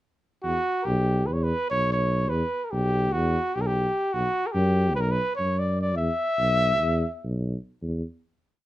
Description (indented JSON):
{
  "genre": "balkan folk",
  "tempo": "294 BPM (eighths)",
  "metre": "9/8",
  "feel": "straight",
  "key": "E dorian sharp4",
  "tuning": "A4 = 440 Hz",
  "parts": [
    { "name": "mellow trumpet", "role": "melody", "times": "0.4-7.4 s", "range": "F#4 to E5", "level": "-25 LUFS", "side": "equal", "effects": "none" },
    { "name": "mellow tuba", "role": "bass", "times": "0.4-8.0 s", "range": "B1 to F#2", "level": "-26 LUFS", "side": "equal", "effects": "none" }
  ],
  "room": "moderate small room ambience, RT60 0.5 s",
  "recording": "none",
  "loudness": "-23 LUFS",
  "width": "side -15 dB against mid",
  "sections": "0.4-7.8 A section; 7.8-8.7 final note",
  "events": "none",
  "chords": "0.4 Em; 4.1 B5; 6.0 E5; 7.8 N.C."
}